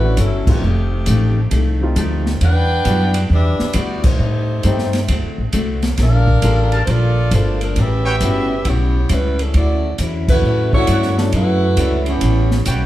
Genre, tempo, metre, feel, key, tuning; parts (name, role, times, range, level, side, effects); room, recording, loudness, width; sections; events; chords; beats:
jazz, big band swing; 135 BPM; 4/4; swing 66% on 8ths; D major; A4 = 440 Hz
warm saxophone section; melody; 0.0-12.7 s; Eb3 to G5; -21 LUFS; equal
clear baby grand piano; accompaniment; 0.0-12.2 s; E3 to A4; -25 LUFS; equal
picked old ladder-braced acoustic guitar; accompaniment; 0.0-12.9 s; A2 to A4; -26 LUFS; left 3 dB
upright bass; bass; 0.0-12.9 s; F1 to A2; -16 LUFS; equal
open jazz drum kit; drums; 0.2-12.8 s; crash cymbal, hi-hat, kick drum, ride cymbal, snare drum; -22 LUFS; equal
warm trumpet section; stabs; 6.7-8.2, 10.9-12.9 s; E4 to A5; -25 LUFS; right 2 dB
brilliant trombone section; second line; 12.1-12.7 s; E3 to C#4; -22 LUFS; right 6 dB
moderate large studio reverb, RT60 1.3 s; heard from further back in the room; -14 LUFS; side -14 dB against mid
0.0-12.9 A section
band accent 0.4, 4.0, 10.2
0.0 Dmaj9; 0.6 F9; 2.4 Em9; 4.2 Am7b5; 5.1 D7; 6.0 Gm9; 7.8 A13; 9.5 Dmaj9; 12.2 A13
0.18 | 0.62 1.07 1.52 1.96 | 2.41 2.85 3.30 3.75 | 4.19 4.64 5.09 5.53 | 5.98 6.42 6.87 7.32 | 7.76 8.21 8.65 9.10 | 9.54 9.99 10.44 10.88 | 11.32 11.77 12.21 12.66